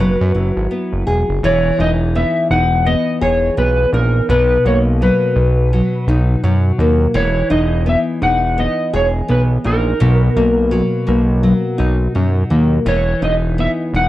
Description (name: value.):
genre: indie pop, bedroom pop.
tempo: 84 BPM.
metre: 4/4.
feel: swing 60% on 16ths.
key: unclear.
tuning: A4 = 440 Hz.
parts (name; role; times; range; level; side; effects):
electric slide guitar; melody; 0.0-14.1 s; A#4 to F#5; -18 LUFS; equal; lush chorus.
nylon-string guitar; accompaniment; 0.0-14.1 s; B2 to G#4; -17 LUFS; left 1 dB; wide subtle chorus, warbly pitch drift.
fat analog bass; bass; 0.0-14.1 s; E1 to F#2; -16 LUFS; equal; none.
room: moderate studio reverb, RT60 0.5 s.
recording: worn, warbling old tape, cassette tape, warbly pitch drift.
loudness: -13 LUFS.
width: side -15 dB against mid.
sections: 0.0-1.4 A section; 1.4-14.1 B section.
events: none.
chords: 0.0 F#9sus4; 1.4 Emaj7; 4.3 Bmaj7; 7.1 Emaj7; 10.0 Bmaj7; 12.9 Emaj7(no3).